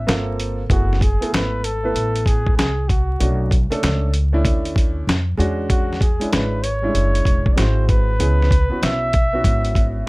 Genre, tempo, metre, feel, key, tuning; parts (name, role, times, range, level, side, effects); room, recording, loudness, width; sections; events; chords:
hip hop, jazz-hop; 96 BPM; 4/4; swing 64% on 16ths; F# minor; A4 = 444 Hz
breathy flugelhorn; melody; 0.0-10.1 s; F#4 to E5; -24 LUFS; equal; slapback echo, plate reverb
dark concert grand piano; accompaniment; 0.0-10.1 s; G3 to B4; -25 LUFS; right 1 dB; plate reverb
upright bass; bass; 0.0-10.0 s; E1 to E#2; -20 LUFS; equal
dusty soul sampler-style drum kit; drums; 0.1-9.9 s; hi-hat, kick drum, snare drum; -18 LUFS; equal; overdrive
little or no reverb; vinyl crackle; -16 LUFS; side -23 dB against mid
0.7-10.1 A section
0.1 Gm11; 0.7 F#m11; 3.2 Bm9; 5.4 E13; 7.6 G#7alt; 8.2 C#m7